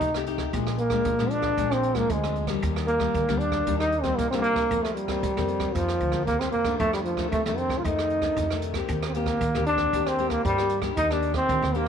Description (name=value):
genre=samba and choro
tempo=115 BPM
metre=4/4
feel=straight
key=unclear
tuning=A4 = 440 Hz
part: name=breathy trombone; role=melody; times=0.0-11.9 s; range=F3 to F4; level=-25 LUFS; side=right 1 dB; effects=none
part: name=nylon-string guitar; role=accompaniment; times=0.0-11.9 s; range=F2 to G4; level=-31 LUFS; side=left 12 dB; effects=none
part: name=upright bass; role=bass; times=0.0-11.9 s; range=Bb1 to F3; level=-30 LUFS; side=right 1 dB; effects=none
part: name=jazz brush drum kit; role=drums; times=0.0-11.9 s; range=hi-hat, kick drum, rim click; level=-33 LUFS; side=right 4 dB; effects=none
room=moderate plate reverb, RT60 2.5 s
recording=1960s-style stereo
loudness=-23 LUFS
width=side -7 dB against mid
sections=0.0-11.9 A section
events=none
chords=0.0 F9 (rootless); 0.5 Bb7; 2.6 Ebmaj7; 4.7 F7sus4; 6.8 F13; 8.9 Cm7/Eb; 11.0 Ebmaj7